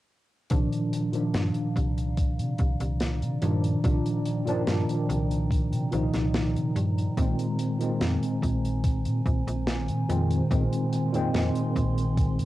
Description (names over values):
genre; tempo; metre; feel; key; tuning
vaporwave; 72 BPM; 4/4; straight; C minor; A4 = 440 Hz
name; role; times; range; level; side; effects
barky tine electric piano; accompaniment; 0.5-12.4 s; Bb2 to Eb4; -26 LUFS; equal; medium stereo tremolo, lush chorus, cassette tape, analog delay
warbly tape-like pad; sustained chords; 0.5-12.4 s; Eb3 to C6; -38 LUFS; right 1 dB; chorus, built-in reverb, vintage 12-bit sampler grit, cassette tape
slap-like FM bass; bass; 0.5-12.4 s; Bb1 to C3; -29 LUFS; equal; tube saturation
electronic kick drum; drums; 0.5-12.3 s; none; -26 LUFS; equal; cassette tape
modern studio drum kit; drums; 0.5-12.4 s; hi-hat, snare drum; -34 LUFS; equal; cassette tape
room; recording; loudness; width
light reverb; home recording on cassette; -24 LUFS; side -16 dB against mid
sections
0.5-12.4 A section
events
none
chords
0.5 Cm11; 7.2 Bb9sus4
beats
| 0.51 1.34 2.17 3.01 | 3.84 4.67 5.51 6.34 | 7.17 8.01 8.84 9.68 | 10.51 11.34 12.18